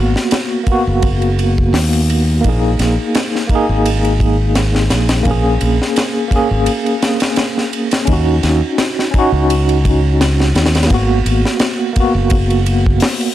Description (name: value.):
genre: trip hop.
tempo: 85 BPM.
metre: 4/4.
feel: swing 55% on 16ths.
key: G# minor.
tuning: A4 = 440 Hz.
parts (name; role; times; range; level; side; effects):
tine electric piano; accompaniment; 0.0-13.3 s; A#3 to G#4; -16 LUFS; equal; medium stereo tremolo, tape echo.
modern bright fingered electric bass; bass; 0.0-13.0 s; F#1 to D#2; -15 LUFS; equal; tube saturation.
deep reggae drum kit; drums; 0.2-13.3 s; hi-hat, kick drum, ride cymbal, snare drum; -17 LUFS; equal; none.
room: studio ambience.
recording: dry, gritty hardware recording, vinyl crackle.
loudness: -12 LUFS.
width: side -13 dB against mid.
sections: 0.0-8.1 A section; 8.1-13.3 B section.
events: none.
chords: 0.0 G#m9 (rootless); 2.4 G#sus2; 5.3 A#m7; 8.1 D#m7; 10.9 G#m9.